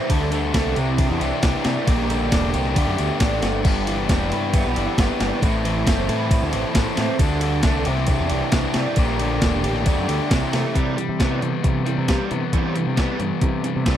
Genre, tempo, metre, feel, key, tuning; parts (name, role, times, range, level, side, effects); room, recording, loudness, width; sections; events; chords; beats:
indie rock; 135 BPM; 4/4; straight; A4 = 440 Hz
overdriven electric guitar; riff; 0.0-14.0 s; G2 to G4; -25 LUFS; right 7 dB; ensemble chorus
overdriven semi-hollow guitar; riff; 0.0-14.0 s; E3 to A4; -25 LUFS; left 9 dB
growling picked electric bass; bass; 0.1-14.0 s; E1 to E3; -25 LUFS; equal; overdrive
crisp 8-bit digital drum machine; drums; 0.1-14.0 s; crash cymbal, hi-hat, kick drum, ride cymbal, snare drum; -22 LUFS; equal; overdrive
light reverb; dark, warm production; -18 LUFS; side -10 dB against mid
0.0-10.8 A section; 10.8-14.0 B section
0.1 Dsus4; 0.8 Cadd9; 1.9 Gm/Bb; 2.8 Dsus4; 3.6 G6; 5.4 Am; 7.2 Dsus4; 7.9 Cadd9; 9.0 Gmadd9/Bb; 9.9 Dsus4; 10.3 C6; 10.8 Cmaj7
| 0.09 0.54 0.98 1.43 | 1.87 2.31 2.76 3.20 | 3.65 4.09 4.53 4.98 | 5.42 5.87 6.31 6.75 | 7.20 7.64 8.09 8.53 | 8.97 9.42 9.86 10.31 | 10.75 11.20 11.64 12.09 | 12.53 12.98 13.42 13.87